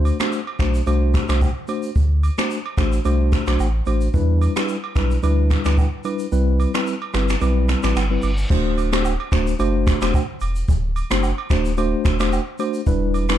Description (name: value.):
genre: afrobeats.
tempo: 110 BPM.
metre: 4/4.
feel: swing 55% on 16ths.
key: unclear.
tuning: A4 = 440 Hz.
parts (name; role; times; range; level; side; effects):
mellow tine electric piano; accompaniment; 0.0-13.4 s; G3 to C5; -23 LUFS; left 1 dB; medium stereo tremolo.
sub bass with octave; bass; 0.0-13.4 s; D1 to E2; -20 LUFS; equal; none.
jazz brush drum kit; drums; 0.1-13.4 s; crash cymbal, finger snaps, kick drum, rim click, shaker; -22 LUFS; equal; none.
agogo bells and woodblock; percussion; 0.1-13.3 s; none; -33 LUFS; right 8 dB; none.
reverse cymbal; sound effects; 7.7-8.5 s; none; -37 LUFS; left 2 dB; none.
room: small room ambience.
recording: dark, warm production.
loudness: -17 LUFS.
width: side -11 dB against mid.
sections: 0.0-8.5 A section; 8.5-13.4 B section.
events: kick muted 6.3-8.5; reverse cymbal 7.7-8.5.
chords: 0.0 D7; 4.1 Em7; 6.3 Cmaj7; 8.5 D7; 12.9 Em7.